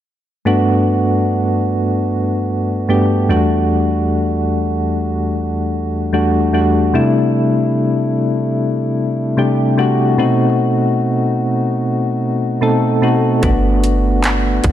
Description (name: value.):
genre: contemporary R&B.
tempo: 74 BPM.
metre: 4/4.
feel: swing 54% on 16ths.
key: G major.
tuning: A4 = 441 Hz.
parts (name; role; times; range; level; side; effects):
soft electric-piano-like synth keys; accompaniment; 0.5-14.7 s; E2 to A4; -14 LUFS; equal; chorus, tremolo.
soft 808-style bass; bass; 13.4-14.7 s; G1; -16 LUFS; right 1 dB; none.
trap drum kit; drums; 13.4-14.7 s; handclaps, hi-hat, kick drum; -17 LUFS; right 1 dB; vintage 12-bit sampler grit.
room: light reverb, digital ambience.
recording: none.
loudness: -14 LUFS.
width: side -11 dB against mid.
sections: 0.5-14.7 A section.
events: none.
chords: 0.5 Gmaj9; 3.3 Em11; 6.9 C69; 10.2 B7b9; 13.4 Gmaj9.